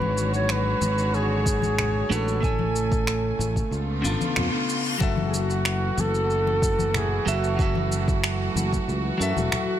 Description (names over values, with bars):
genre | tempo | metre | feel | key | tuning
sunset chillout | 93 BPM | 4/4 | straight | F# minor | A4 = 445 Hz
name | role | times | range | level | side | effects
mellow flugelhorn | melody | 0.0-9.8 s | F#4 to C#5 | -28 LUFS | equal | digital delay
clean electric guitar | accompaniment | 0.0-9.8 s | C#3 to G#5 | -29 LUFS | moving between left 7 dB and right 7 dB | auto-pan, digital delay
rich chamber string section | sustained chords | 0.0-9.8 s | C#3 to G#5 | -31 LUFS | right 2 dB | none
sustaining fretless electric bass | bass | 0.0-9.5 s | E1 to F#2 | -26 LUFS | equal | tube saturation, wide subtle chorus
congas | percussion | 0.0-9.7 s | none | -32 LUFS | left 4 dB | none
electronic shaker and finger snaps | drums | 0.2-9.7 s | none | -30 LUFS | equal | overdrive
electronic kick drum | drums | 1.5-8.9 s | none | -25 LUFS | equal | overdrive
reverse cymbal | sound effects | 4.0-5.0 s | none | -33 LUFS | left 4 dB | none
room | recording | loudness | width
light reverb, studio reverb | none | -21 LUFS | side -11 dB against mid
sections
0.0-5.0 A section; 5.0-9.8 B section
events
filter sweep on clean electric guitar 0.0-5.0; reverse cymbal 4.0-5.0; band accent 4.4-4.7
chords
0.0 Bm13/G#; 2.4 Amaj7; 3.7 C#7b9b13; 5.0 F#m7